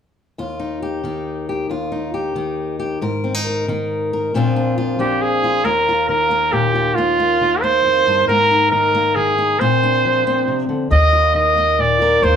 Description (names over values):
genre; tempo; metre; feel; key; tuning
folk; 137 BPM; 3/4; straight; Eb major; A4 = 439 Hz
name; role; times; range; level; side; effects
fingerpicked steel-string acoustic guitar; accompaniment; 0.4-12.4 s; Eb2 to Bb4; -20 LUFS; left 2 dB; none
clear trumpet; melody; 5.0-12.4 s; F4 to Eb5; -15 LUFS; right 2 dB; none
upright bass; bass; 10.9-12.4 s; Eb2; -18 LUFS; equal; none
room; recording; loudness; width
moderate large studio reverb, RT60 0.8 s; band playing live in one room; -15 LUFS; side -8 dB against mid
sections
0.4-5.7 A section; 5.7-12.4 B section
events
none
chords
0.4 Ebsus2; 3.0 Absus2; 4.3 Bbadd9; 5.7 Ebsus2; 8.3 Absus2; 9.6 Bbadd9; 10.9 Ebsus2